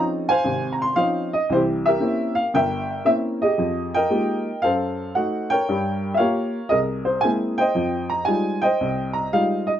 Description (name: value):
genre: solo jazz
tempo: 115 BPM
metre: 4/4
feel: swing 68% on 8ths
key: F minor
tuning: A4 = 440 Hz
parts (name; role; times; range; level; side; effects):
- warm upright piano; solo; 0.0-9.7 s; G1 to C6; -19 LUFS; equal; none
room: light reverb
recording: nothing above 7.8 kHz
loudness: -19 LUFS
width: side -10 dB against mid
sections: 0.0-9.8 A section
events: none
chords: 0.0 Dbmaj9; 1.5 C7b9; 3.6 Fm11; 4.6 F#dim7; 5.7 Gm7b5; 6.7 C7alt; 7.8 Fm9